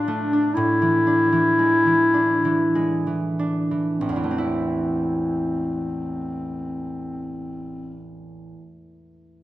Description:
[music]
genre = classical, romantic duo for clarinet and harp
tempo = 30-42 BPM (dotted quarters)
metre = 6/8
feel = rubato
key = A minor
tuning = A4 = 440 Hz
[part]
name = clear clarinet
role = melody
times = 0.0-8.1 s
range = C4 to E4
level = -21 LUFS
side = left 1 dB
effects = none
[part]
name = concert harp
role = accompaniment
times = 0.0-8.9 s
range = A1 to F4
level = -24 LUFS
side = right 1 dB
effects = none
[sound]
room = wet recital hall reverb, RT60 1.2 s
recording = none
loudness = -19 LUFS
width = side -15 dB against mid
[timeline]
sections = 0.0-4.0 A section; 4.0-7.3 B section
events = slowing down 0.0-4.0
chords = 0.0 Dm/A; 0.5 E7/A; 4.0 Am

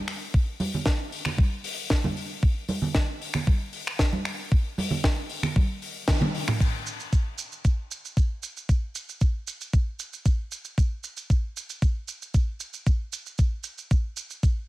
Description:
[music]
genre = nu-disco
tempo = 115 BPM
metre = 4/4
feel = straight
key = none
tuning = none
[part]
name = tight funk drum kit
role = drums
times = 0.1-14.5 s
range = crash cymbal, finger snaps, hi-hat, shaker, snare drum, toms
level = -31 LUFS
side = equal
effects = none
[part]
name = electronic kick drum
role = drums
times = 0.3-14.5 s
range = none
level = -22 LUFS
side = equal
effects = none
[part]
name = congas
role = percussion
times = 0.6-6.3 s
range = none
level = -30 LUFS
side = right 2 dB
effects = none
[sound]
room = little or no reverb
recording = none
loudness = -24 LUFS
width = side -18 dB against mid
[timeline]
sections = 0.0-6.6 A section; 6.6-14.7 B section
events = drum fill 6.1-6.6; band accent 6.1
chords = none

